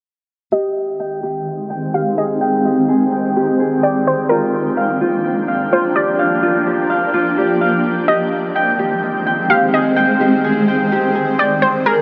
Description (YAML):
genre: hip hop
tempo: 127 BPM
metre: 4/4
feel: half-time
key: Ab lydian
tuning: A4 = 439 Hz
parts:
  - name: warbly dusty pluck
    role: melody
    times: 0.5-12.0 s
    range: Bb4 to F5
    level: -22 LUFS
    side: equal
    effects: chorus, low-pass filter, digital delay
  - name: shimmering ambient pad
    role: sustained chords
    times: 1.3-12.0 s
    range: Eb3 to G5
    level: -20 LUFS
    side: equal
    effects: chorus, built-in reverb, phaser, low-pass filter
  - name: Celtic harp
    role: arpeggios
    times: 0.5-12.0 s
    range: F4 to G5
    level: -20 LUFS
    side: equal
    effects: low-pass filter, digital delay
room: wet huge ambient reverb, RT60 6.9 s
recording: none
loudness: -16 LUFS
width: mono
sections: 0.5-12.0 A section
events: filter sweep 0.5-12.0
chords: 0.5 Abmaj7; 4.3 Gm7; 8.1 Abmaj7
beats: | 0.52 0.99 1.47 1.94 | 2.41 2.88 3.36 3.83 | 4.30 4.77 5.25 5.72 | 6.19 6.66 7.14 7.61 | 8.08 8.55 9.03 9.50 | 9.97 10.44 10.92 11.39 | 11.86